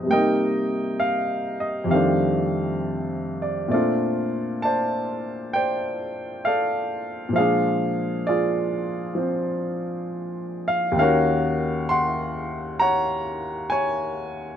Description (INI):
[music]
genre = solo jazz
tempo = 66 BPM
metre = 4/4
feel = swing 67% on 8ths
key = Bb major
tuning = A4 = 440 Hz
[part]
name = warm upright piano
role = solo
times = 0.0-14.6 s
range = Eb2 to C6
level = -21 LUFS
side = equal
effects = none
[sound]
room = little or no reverb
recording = close, detailed microphones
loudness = -21 LUFS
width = side -9 dB against mid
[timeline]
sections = 0.0-3.7 A section; 3.7-14.6 B section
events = none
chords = 0.1 Cm7; 1.9 F13; 3.7 Bbmaj9; 7.3 Bb7; 11.0 Ebm7